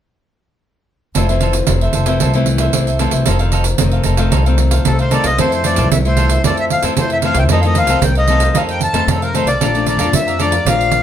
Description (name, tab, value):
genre	samba and choro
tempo	114 BPM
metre	4/4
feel	straight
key	F major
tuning	A4 = 439 Hz
part	cavaquinho	accompaniment	1.1-11.0 s	Eb4 to Bb5	-22 LUFS	right 4 dB	none
part	nylon-string guitar	accompaniment	1.2-11.0 s	F2 to D4	-20 LUFS	left 7 dB	none
part	upright bass	bass	1.2-11.0 s	F1 to F2	-16 LUFS	equal	none
part	pandeiro	percussion	1.2-11.0 s	none	-19 LUFS	right 7 dB	none
part	accordion	melody	4.9-11.0 s	A4 to A5	-18 LUFS	left 2 dB	none
room	light reverb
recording	none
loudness	-12 LUFS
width	side -10 dB against mid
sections	1.2-5.4 A section; 5.4-11.0 B section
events	none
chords	1.2 Fmaj7; 3.3 F7; 5.4 Fmaj7; 7.5 F7; 9.6 Bbmaj7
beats	| 1.16 1.69 2.21 2.74 | 3.27 3.80 4.33 4.86 | 5.38 5.91 6.44 6.97 | 7.49 8.02 8.55 9.08 | 9.61 10.13 10.66